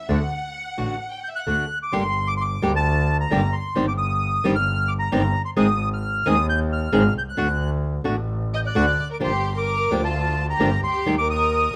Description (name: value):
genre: tango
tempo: 132 BPM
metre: 4/4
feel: rubato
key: G minor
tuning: A4 = 440 Hz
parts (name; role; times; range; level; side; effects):
- warm studio violin section; second line; 0.0-1.5, 8.5-11.8 s; F4 to G5; -31 LUFS; equal; none
- flamenco guitar; accompaniment; 0.1-11.2 s; D3 to Ab4; -24 LUFS; equal; none
- clear double bass; bass; 0.1-11.8 s; G1 to Eb2; -27 LUFS; equal; none
- bandoneon; melody; 1.2-11.8 s; A5 to G6; -26 LUFS; equal; none
room: light reverb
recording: none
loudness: -22 LUFS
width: mono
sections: 0.0-1.9 A section; 1.9-11.8 B section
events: violin section solo 0.0-1.9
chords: 0.1 D; 1.9 Gm; 3.8 Cmadd9/G; 5.6 Ab; 7.4 D; 9.2 Gm7; 11.1 Eb